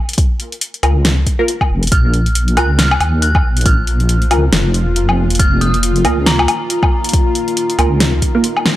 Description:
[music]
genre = deep dubstep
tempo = 138 BPM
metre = 4/4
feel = swing 58% on 16ths, half-time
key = Bb minor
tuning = A4 = 439 Hz
[part]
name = deep house drum kit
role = drums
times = 0.1-8.8 s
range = hi-hat, snare drum, woodblock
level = -17 LUFS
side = left 1 dB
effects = none
[part]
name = electronic kick drum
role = drums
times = 0.2-8.3 s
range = none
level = -14 LUFS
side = equal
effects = none
[part]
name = filtered dub chord stab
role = stabs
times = 0.8-8.4 s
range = Bb3 to Bb4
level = -21 LUFS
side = right 2 dB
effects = phaser, lush chorus, dub echo
[part]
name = deep soft wobble bass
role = bass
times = 0.8-8.2 s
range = F1 to Eb2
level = -14 LUFS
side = equal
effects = chorus
[part]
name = dark detuned synth bell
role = melody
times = 1.9-8.4 s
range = Bb5 to Gb6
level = -22 LUFS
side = equal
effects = chorus, dub echo
[part]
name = bowed-like drone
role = sustained chords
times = 3.6-8.8 s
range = Bb2 to F4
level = -21 LUFS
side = left 2 dB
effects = built-in reverb
[sound]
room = light reverb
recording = dry, gritty hardware recording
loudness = -12 LUFS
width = side -14 dB against mid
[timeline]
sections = 0.0-8.8 A section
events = kick drops out 8.4-8.8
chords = 0.0 Bb5

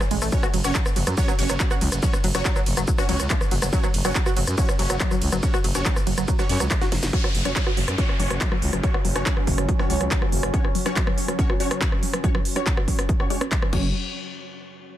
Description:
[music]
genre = driving peak-time techno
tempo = 141 BPM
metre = 4/4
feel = straight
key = unclear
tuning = A4 = 440 Hz
[part]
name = tight sequenced synth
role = riff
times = 0.0-13.9 s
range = E#3 to F#4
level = -30 LUFS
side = equal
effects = chorus, sidechain pumping, dub echo
[part]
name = techno drum kit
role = drums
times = 0.0-13.8 s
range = crash cymbal, handclaps, hi-hat, ride cymbal, rim click, shaker, snare drum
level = -27 LUFS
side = equal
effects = sidechain pumping on hats, sidechain pumping on perc, sidechain pumping on cymbals
[part]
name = growling FM bass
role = bass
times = 0.1-10.5, 13.7-13.9 s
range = F#1 to F#2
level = -25 LUFS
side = equal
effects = sidechain pumping
[part]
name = rave stab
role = stabs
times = 0.3-13.9 s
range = C#4 to C#5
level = -31 LUFS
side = right 1 dB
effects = chorus, built-in reverb, phaser, sidechain pumping, tape echo
[part]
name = electronic kick drum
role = drums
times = 0.3-13.8 s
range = none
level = -23 LUFS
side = equal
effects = none
[part]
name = deep dark ambient pad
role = drone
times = 8.2-14.0 s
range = F#3 to C#4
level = -32 LUFS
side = equal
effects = chorus, built-in reverb, sidechain pumping
[part]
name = downlifter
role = sound effects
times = 7.1-10.5 s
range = none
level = -33 LUFS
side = equal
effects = none
[sound]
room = digital ambience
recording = dense, heavily limited modern master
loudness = -20 LUFS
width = side -12 dB against mid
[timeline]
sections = 0.0-7.1 A section; 7.1-13.9 B section; 13.9-15.0 C section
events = drop 0.0-7.1; drum fill 6.8-7.1; filter sweep on synth arpeggio sound 7.1-13.9; filter sweep on synth stab 7.1-13.9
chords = 0.0 F#5; 13.9 N.C.

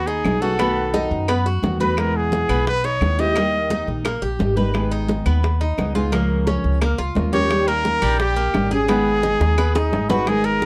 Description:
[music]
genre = latin, Cuban son and guajira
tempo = 174 BPM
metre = 4/4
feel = straight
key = G# minor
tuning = A4 = 442 Hz
[part]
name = clear trumpet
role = melody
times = 0.0-3.9, 7.3-10.7 s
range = D#4 to D#5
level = -24 LUFS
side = equal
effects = none
[part]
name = Cuban tres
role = arpeggios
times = 0.0-10.7 s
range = G3 to B4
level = -27 LUFS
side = equal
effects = none
[part]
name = upright bass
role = bass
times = 0.0-10.7 s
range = G#1 to F#2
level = -25 LUFS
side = equal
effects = none
[part]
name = bongos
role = percussion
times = 0.1-10.7 s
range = none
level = -29 LUFS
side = equal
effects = none
[part]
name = congas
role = percussion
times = 0.1-10.7 s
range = none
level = -31 LUFS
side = equal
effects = none
[part]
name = nylon-string guitar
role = accompaniment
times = 0.2-10.7 s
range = B2 to A#4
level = -27 LUFS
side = equal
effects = none
[part]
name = claves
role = percussion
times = 0.2-10.4 s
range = none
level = -37 LUFS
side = equal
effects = none
[sound]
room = moderate studio reverb, RT60 0.6 s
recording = dark, warm production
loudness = -20 LUFS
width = mono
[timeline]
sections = 0.0-10.3 A section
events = drum fill 9.4-10.3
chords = 0.0 G#m7; 0.6 B7; 2.0 Emaj7; 3.4 D#; 4.7 G#m; 6.1 C#6; 7.5 D#7; 8.9 G#m

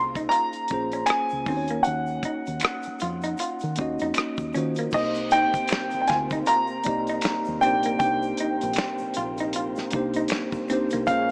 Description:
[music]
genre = R&B, neo-soul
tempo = 78 BPM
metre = 4/4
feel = swing 59% on 16ths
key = C phrygian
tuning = A4 = 439 Hz
[part]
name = electric guitar through a small old amp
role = second line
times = 0.0-11.1 s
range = Bb3 to F4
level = -35 LUFS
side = equal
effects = spring reverb
[part]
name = mellow tine electric piano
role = accompaniment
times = 0.0-11.3 s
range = Bb3 to Eb5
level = -32 LUFS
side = equal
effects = none
[part]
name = deep dub fingered electric bass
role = bass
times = 0.0-11.3 s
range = Bb1 to Eb3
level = -38 LUFS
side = equal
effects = none
[part]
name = warm soul drum kit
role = drums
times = 0.2-11.3 s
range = crash cymbal, finger snaps, hi-hat, kick drum, rim click, snare drum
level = -33 LUFS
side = equal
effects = none
[part]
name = egg shaker and finger snaps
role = percussion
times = 0.2-11.3 s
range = none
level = -39 LUFS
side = equal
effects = none
[part]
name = warm concert grand piano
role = melody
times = 0.3-11.3 s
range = Eb5 to Bb5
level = -27 LUFS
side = equal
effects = none
[part]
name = tonewheel organ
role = sustained chords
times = 4.9-11.3 s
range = C3 to Db4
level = -38 LUFS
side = equal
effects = slow rotary speaker, overdrive
[sound]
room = light reverb, small room ambience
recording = small speaker sound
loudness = -25 LUFS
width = mono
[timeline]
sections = 0.0-4.9 A section; 4.9-11.3 B section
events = none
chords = 0.0 Bbm9; 1.5 Ebm9; 4.9 Cm9

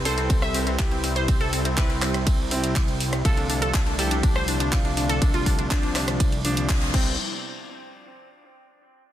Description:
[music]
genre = progressive house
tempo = 122 BPM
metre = 4/4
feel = straight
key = C major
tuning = A4 = 438 Hz
[part]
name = warm analog pad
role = sustained chords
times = 0.0-7.2 s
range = C3 to B4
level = -32 LUFS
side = equal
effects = chorus, sidechain pumping
[part]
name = fat analog bass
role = bass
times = 0.0-7.2 s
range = C2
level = -27 LUFS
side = equal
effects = sidechain pumping
[part]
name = clear concert grand piano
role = melody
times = 0.1-7.1 s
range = F3 to A4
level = -31 LUFS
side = right 1 dB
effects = vintage 12-bit sampler grit, sidechain pumping, dub echo
[part]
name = glassy wavetable pluck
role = arpeggios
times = 0.1-7.1 s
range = C4 to E5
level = -30 LUFS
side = equal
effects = chorus, sidechain pumping, dub echo
[part]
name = house drum kit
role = drums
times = 0.1-7.0 s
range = crash cymbal, handclaps, hi-hat, ride cymbal, rim click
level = -28 LUFS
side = equal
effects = soft clipping on snare
[part]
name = electronic kick drum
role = drums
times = 0.3-7.0 s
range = none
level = -22 LUFS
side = equal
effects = none
[sound]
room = light reverb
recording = dense, heavily limited modern master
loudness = -20 LUFS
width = side -12 dB against mid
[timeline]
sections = 0.0-7.2 A section; 7.2-9.1 B section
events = drop 0.0-7.2; band accent 6.7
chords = 0.0 Cmaj7; 3.2 Dm/C; 6.9 Cmaj7; 7.2 N.C.

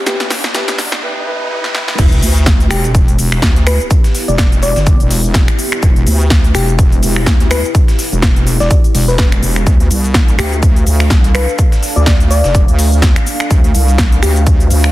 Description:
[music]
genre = bass house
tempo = 125 BPM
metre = 4/4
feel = swing 57% on 16ths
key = E phrygian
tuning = A4 = 440 Hz
[part]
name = deep dark ambient pad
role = sustained chords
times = 3.2-14.9 s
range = B3 to F5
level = -23 LUFS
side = equal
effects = chorus, built-in reverb, sidechain pumping
[part]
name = wobble bass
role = bass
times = 0.0-14.9 s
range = E1 to E2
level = -13 LUFS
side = equal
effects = chorus, overdrive, sidechain pumping, high-pass filter
[part]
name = riser and sub drop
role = sound effects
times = 0.0-3.9 s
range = none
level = -21 LUFS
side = equal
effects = none
[part]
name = bell-like FM electric piano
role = melody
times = 0.1-14.4 s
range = G4 to D5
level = -21 LUFS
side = left 2 dB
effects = chorus, tape echo
[part]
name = clear grand piano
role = stabs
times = 0.1-2.0 s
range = B3 to B4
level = -24 LUFS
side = equal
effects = sidechain pumping, tape echo
[part]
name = big-room dance drum kit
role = drums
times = 0.1-14.9 s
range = cabasa, crash cymbal, finger snaps, hi-hat, snare drum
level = -18 LUFS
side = equal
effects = soft clipping on snare
[part]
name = breakbeat sampler-style drum kit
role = drums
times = 0.1-14.9 s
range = hi-hat, shaker, snare drum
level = -28 LUFS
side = equal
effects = none
[part]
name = electronic kick drum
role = drums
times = 2.0-14.6 s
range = none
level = -11 LUFS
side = equal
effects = none
[sound]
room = little or no reverb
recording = dense, heavily limited modern master, high-pass filter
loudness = -9 LUFS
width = side -16 dB against mid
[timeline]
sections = 0.0-2.0 A section; 2.0-14.9 B section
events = build-up 0.0-2.0; drum fill 0.0-1.0, 1.6-2.0; riser 0.0-2.0; break 1.0-2.0; drop 2.0-14.9; impact 2.0-3.9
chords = 0.0 Em; 9.7 Dm

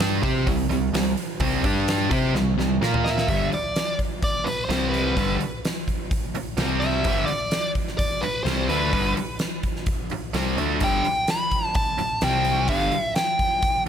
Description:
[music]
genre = hard rock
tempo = 128 BPM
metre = 4/4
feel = straight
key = unclear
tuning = A4 = 439 Hz
[part]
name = sludgy distorted guitar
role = riff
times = 0.0-13.0 s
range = G2 to C5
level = -27 LUFS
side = left 11 dB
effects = overdrive
[part]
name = tight distorted guitar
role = riff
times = 0.0-13.0 s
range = G2 to C5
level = -26 LUFS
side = right 11 dB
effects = distortion
[part]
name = growling picked electric bass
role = bass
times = 0.0-13.9 s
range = G1 to C3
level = -27 LUFS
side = equal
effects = overdrive
[part]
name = huge arena drum kit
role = drums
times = 0.0-13.9 s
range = hi-hat, kick drum, snare drum, toms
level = -26 LUFS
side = equal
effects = none
[part]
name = biting lead guitar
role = melody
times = 3.0-13.8 s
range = B4 to B5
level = -25 LUFS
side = equal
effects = overdrive, tape echo
[sound]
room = small room ambience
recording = none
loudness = -21 LUFS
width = side -8 dB against mid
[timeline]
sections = 0.0-3.3 A section; 3.3-13.9 B section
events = drum fill 2.3-3.3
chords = 0.2 C5; 1.6 G5; 2.1 C5; 2.8 Bb5; 3.3 G5; 4.7 C5; 5.2 G5; 6.6 C5; 7.0 G; 12.2 C5; 12.7 G5

